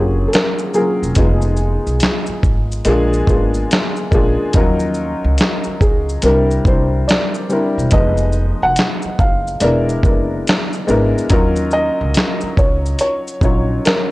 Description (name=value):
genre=lo-fi hip hop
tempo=71 BPM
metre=4/4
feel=swing 66% on 16ths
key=Eb minor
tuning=A4 = 440 Hz
part: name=felt-muted upright piano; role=melody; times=0.0-14.1 s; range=Ab4 to Gb5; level=-20 LUFS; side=equal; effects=low-pass filter, tape echo
part: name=warm upright piano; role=accompaniment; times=0.0-14.1 s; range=F3 to Db5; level=-19 LUFS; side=left 1 dB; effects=low-pass filter
part: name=upright bass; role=bass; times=0.0-13.8 s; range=Fb1 to Eb2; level=-19 LUFS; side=equal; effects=none
part: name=dusty soul sampler-style drum kit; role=drums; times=0.3-14.1 s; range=handclaps, hi-hat, kick drum, shaker, snare drum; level=-16 LUFS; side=equal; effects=none
room=small room ambience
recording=dry, gritty hardware recording, cassette tape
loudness=-13 LUFS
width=side -19 dB against mid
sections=0.0-14.1 A section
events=none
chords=0.0 Gbmaj7; 1.2 Fm7b5; 2.8 Bb7; 4.5 Ebm7; 6.2 C7; 7.9 Fm7b5; 9.6 E7#11; 11.3 Ebm9